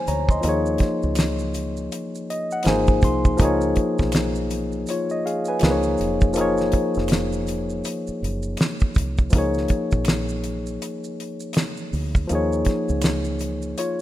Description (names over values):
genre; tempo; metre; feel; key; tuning
R&B, neo-soul; 81 BPM; 4/4; swing 62% on 16ths; Db major; A4 = 440 Hz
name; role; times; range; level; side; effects
barky tine electric piano; accompaniment; 0.0-14.0 s; F3 to C6; -23 LUFS; left 1 dB; overdrive
deep dub fingered electric bass; bass; 0.1-13.7 s; F1 to Eb2; -27 LUFS; right 1 dB; none
damped 70s drum kit; drums; 0.1-14.0 s; hi-hat, kick drum, snare drum; -22 LUFS; equal; none
maracas and finger snaps; percussion; 0.1-14.0 s; none; -41 LUFS; right 7 dB; none
room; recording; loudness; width
light reverb, studio reverb; rough home demo mix; -20 LUFS; side -14 dB against mid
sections
0.0-14.0 A section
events
tine electric piano fill 1.9-3.4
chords
0.4 Ebsus2; 2.7 Ab69; 3.4 Db7; 5.6 Db69; 6.4 Gb6; 9.3 Db69; 12.3 Ebsus2